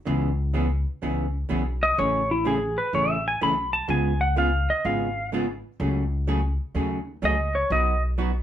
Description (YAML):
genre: country, western swing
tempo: 126 BPM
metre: 4/4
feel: swing 67% on 8ths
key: unclear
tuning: A4 = 442 Hz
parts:
  - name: archtop guitar, miked and amplified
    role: accompaniment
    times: 0.1-8.3 s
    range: B2 to G#4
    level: -27 LUFS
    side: right 1 dB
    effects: none
  - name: upright bass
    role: bass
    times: 0.1-8.4 s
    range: G#1 to D#2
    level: -26 LUFS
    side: equal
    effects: none
  - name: clean lap steel guitar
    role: melody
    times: 1.8-8.0 s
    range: E4 to B5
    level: -23 LUFS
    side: equal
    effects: none
room: moderate studio reverb, RT60 0.6 s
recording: band playing live in one room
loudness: -22 LUFS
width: side -10 dB against mid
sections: 0.0-8.4 A section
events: electric slide guitar solo 0.0-8.4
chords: 0.1 C#m7; 2.0 Amaj7; 3.9 C#7; 5.8 F#madd9/C#; 7.7 B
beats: | 0.06 0.54 1.02 1.50 | 1.98 2.46 2.93 3.41 | 3.89 4.37 4.84 5.32 | 5.80 6.27 6.75 7.23 | 7.71 8.18